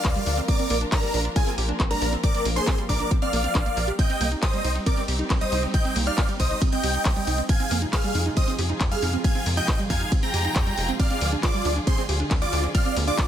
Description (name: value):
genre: uplifting trance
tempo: 137 BPM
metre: 4/4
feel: straight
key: C minor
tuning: A4 = 440 Hz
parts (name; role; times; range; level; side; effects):
- big supersaw lead; melody; 0.0-13.3 s; D4 to Bb5; -28 LUFS; equal; phaser, sidechain pumping, tape echo
- supersaw stab; second line; 0.0-13.3 s; Ab5 to Bb6; -33 LUFS; right 1 dB; lush chorus, cassette tape, sidechain pumping, tape echo
- warm studio string section; sustained chords; 0.0-13.3 s; C3 to Bb4; -33 LUFS; left 1 dB; sidechain pumping
- analog pluck; arpeggios; 0.0-13.3 s; G3 to G4; -32 LUFS; right 5 dB; chorus, sidechain pumping, tape echo
- tight sequencer bass; bass; 0.0-13.1 s; F1 to F2; -26 LUFS; equal; tube saturation, sidechain pumping
- electronic kick drum; drums; 0.0-13.3 s; none; -23 LUFS; equal; studio reverb
- house drum kit; drums; 0.0-13.3 s; handclaps, hi-hat, ride cymbal; -31 LUFS; left 1 dB; studio reverb
room: digital ambience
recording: none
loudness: -21 LUFS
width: side -10 dB against mid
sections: 0.0-13.3 A section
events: none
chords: 0.5 Bb; 4.0 Cmadd9; 7.5 Fm; 11.0 Ddim